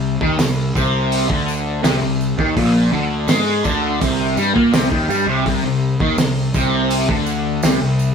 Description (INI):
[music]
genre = psychedelic rock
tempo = 83 BPM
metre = 4/4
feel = straight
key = C minor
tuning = A4 = 442 Hz
[part]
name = fuzz guitar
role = riff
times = 0.0-8.1 s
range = Bb2 to Bb3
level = -17 LUFS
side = left 1 dB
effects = distortion, phaser
[part]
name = fuzz picked electric bass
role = bass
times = 0.0-8.1 s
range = Bb1 to Bb2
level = -22 LUFS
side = equal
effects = overdrive
[part]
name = cloth-damped thuddy drum kit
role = drums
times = 0.2-7.8 s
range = hi-hat, kick drum, snare drum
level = -21 LUFS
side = right 1 dB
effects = none
[part]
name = tambourine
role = percussion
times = 0.4-8.1 s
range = none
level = -34 LUFS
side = right 8 dB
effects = none
[sound]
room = moderate stone room reverb, RT60 0.9 s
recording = band playing live in one room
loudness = -15 LUFS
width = side -6 dB against mid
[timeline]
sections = 0.0-8.1 A section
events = none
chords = 0.0 Cm